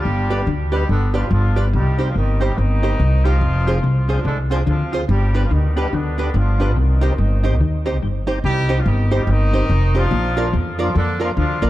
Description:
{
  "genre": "ska",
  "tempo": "143 BPM",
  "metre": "4/4",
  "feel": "swing 60% on 8ths",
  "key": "C minor",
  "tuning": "A4 = 440 Hz",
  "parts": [
    { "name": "mellow horn section", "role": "melody", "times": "0.0-11.7 s", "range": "D3 to G4", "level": "-24 LUFS", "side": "equal", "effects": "tape echo" },
    { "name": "mellow electric guitar", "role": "riff", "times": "0.1-11.7 s", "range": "F2 to F3", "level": "-26 LUFS", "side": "left 3 dB", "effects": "none" },
    { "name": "upright bass", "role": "bass", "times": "0.1-11.7 s", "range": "F1 to F2", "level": "-17 LUFS", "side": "equal", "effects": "none" },
    { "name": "archtop guitar, miked and amplified", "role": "accompaniment", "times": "0.3-11.7 s", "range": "D4 to D5", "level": "-26 LUFS", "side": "right 4 dB", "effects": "tape echo" },
    { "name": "percussive tonewheel organ", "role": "stabs", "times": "0.3-11.7 s", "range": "Bb3 to C5", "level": "-30 LUFS", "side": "left 4 dB", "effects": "overdrive, chorus vibrato, slow rotary speaker, tape echo" }
  ],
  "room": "light reverb, studio reverb",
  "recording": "dark, warm production",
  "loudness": "-16 LUFS",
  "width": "side -15 dB against mid",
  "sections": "0.0-8.4 A section; 8.4-11.7 A section",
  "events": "none",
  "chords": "0.1 G; 1.7 Cm; 3.4 Fm; 5.1 G; 6.8 Cm; 10.1 Bb"
}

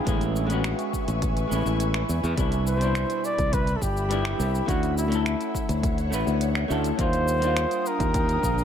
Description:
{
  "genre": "sunset chillout",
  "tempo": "104 BPM",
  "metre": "4/4",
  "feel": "straight",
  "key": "unclear",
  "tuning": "A4 = 440 Hz",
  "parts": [
    { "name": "mellow flugelhorn", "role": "melody", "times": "0.0-8.6 s", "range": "E4 to D5", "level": "-29 LUFS", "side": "equal", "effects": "ping-pong delay" },
    { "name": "vintage hollow-body jazz guitar", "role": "accompaniment", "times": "0.0-8.6 s", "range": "B2 to B4", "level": "-29 LUFS", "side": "left 2 dB", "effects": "auto-pan, tape echo" },
    { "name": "ethereal airy pad", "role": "sustained chords", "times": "0.0-8.6 s", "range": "D4 to Eb6", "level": "-33 LUFS", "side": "left 2 dB", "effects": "ensemble chorus, built-in reverb" },
    { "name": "modern bright fingered electric bass", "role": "bass", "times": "0.1-8.6 s", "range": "G1 to E2", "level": "-26 LUFS", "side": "equal", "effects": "none" },
    { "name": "deep house drum kit", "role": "drums", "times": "0.1-8.6 s", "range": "cabasa, finger snaps, hi-hat", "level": "-34 LUFS", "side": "equal", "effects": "none" },
    { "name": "electronic kick drum", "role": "drums", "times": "0.1-8.6 s", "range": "none", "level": "-28 LUFS", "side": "equal", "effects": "none" }
  ],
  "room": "light reverb",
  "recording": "none",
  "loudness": "-22 LUFS",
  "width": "side -9 dB against mid",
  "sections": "0.0-8.6 A section",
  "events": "none",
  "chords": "0.0 Amaj9; 2.4 Cmaj9; 4.7 Dmaj9; 7.0 Ebmaj9"
}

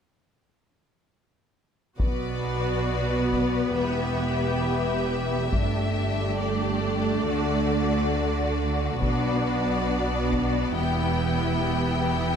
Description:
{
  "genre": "cinematic, epic orchestral film score",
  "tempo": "69 BPM (dotted quarters)",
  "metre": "6/8",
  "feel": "straight",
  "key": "B minor",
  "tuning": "A4 = 440 Hz",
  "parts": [
    { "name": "clear symphonic violin section", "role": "second line", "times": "2.0-12.4 s", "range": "F#4 to G5", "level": "-30 LUFS", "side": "left 6 dB", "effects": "none" },
    { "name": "rich symphonic viola section", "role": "accompaniment", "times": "2.0-12.4 s", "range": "A3 to G4", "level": "-27 LUFS", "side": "equal", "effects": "none" },
    { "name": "rich studio cello section", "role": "bass", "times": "2.0-12.4 s", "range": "E2 to D3", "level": "-30 LUFS", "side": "right 3 dB", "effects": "none" },
    { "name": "rich symphonic double bass section", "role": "bass", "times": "2.0-12.4 s", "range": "E1 to D2", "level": "-29 LUFS", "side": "right 3 dB", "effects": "none" },
    { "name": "taiko ensemble", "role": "drums", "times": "2.0-10.6 s", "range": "none", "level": "-30 LUFS", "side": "left 1 dB", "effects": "none" }
  ],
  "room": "moderate scoring stage reverb, RT60 2.0 s",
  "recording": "none",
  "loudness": "-23 LUFS",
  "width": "side -7 dB against mid",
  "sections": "2.0-12.4 A section",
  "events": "build-up 2.0-12.4",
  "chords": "2.0 Bm; 3.8 Em; 5.5 Gsus2; 7.3 D; 9.0 Bm; 10.8 Em"
}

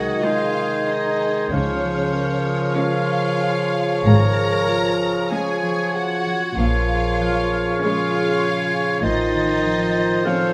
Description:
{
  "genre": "classical",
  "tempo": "48 BPM",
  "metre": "4/4",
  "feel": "rubato",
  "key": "Db major",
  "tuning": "A4 = 442 Hz",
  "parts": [
    { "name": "rich symphonic violin section", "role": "melody", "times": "0.0-10.5 s", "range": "Db5 to Bb5", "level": "-31 LUFS", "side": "equal", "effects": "none" },
    { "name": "hollow flute section", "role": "second line", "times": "0.0-10.5 s", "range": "F6 to A6", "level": "-32 LUFS", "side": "equal", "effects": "none" },
    { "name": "mellow clarinet", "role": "second line", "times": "0.0-10.5 s", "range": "F4 to Bb4", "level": "-32 LUFS", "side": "equal", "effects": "none" },
    { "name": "rich symphonic violin section", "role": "second line", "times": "0.0-10.5 s", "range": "Db4 to Bb4", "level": "-32 LUFS", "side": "equal", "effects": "none" },
    { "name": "warm oboe", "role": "second line", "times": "0.0-10.5 s", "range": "C5 to F5", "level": "-31 LUFS", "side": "equal", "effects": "none" },
    { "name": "mellow bassoon", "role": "accompaniment", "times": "0.0-10.5 s", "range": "Db3 to F3", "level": "-30 LUFS", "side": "equal", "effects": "none" },
    { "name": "mellow French horn section", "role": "sustained chords", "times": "0.0-10.5 s", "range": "F3 to Ab4", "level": "-29 LUFS", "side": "equal", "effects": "none" },
    { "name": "concert harp", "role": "arpeggios", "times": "0.0-10.5 s", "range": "A2 to Ab5", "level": "-30 LUFS", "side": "equal", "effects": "none" },
    { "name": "mellow trumpet section", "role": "stabs", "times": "0.0-10.5 s", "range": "C5 to Eb5", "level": "-29 LUFS", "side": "equal", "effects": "none" },
    { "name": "rich symphonic viola section", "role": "accompaniment", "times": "0.2-10.5 s", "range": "F3 to Eb4", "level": "-30 LUFS", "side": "equal", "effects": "none" },
    { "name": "rich symphonic cello section", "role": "bass", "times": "1.5-10.0 s", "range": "Ab2 to Db3", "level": "-26 LUFS", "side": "equal", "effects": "none" },
    { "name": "rich symphonic double bass section", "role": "bass", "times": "1.5-10.0 s", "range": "Ab1 to Db2", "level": "-25 LUFS", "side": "equal", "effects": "none" }
  ],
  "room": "moderate scoring stage reverb, RT60 1.7 s",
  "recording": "close, detailed microphones",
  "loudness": "-20 LUFS",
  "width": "mono",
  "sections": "0.0-10.5 A section",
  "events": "none",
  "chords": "0.0 Ab7/C; 1.5 Db; 6.6 Bbm7; 9.0 F7/A"
}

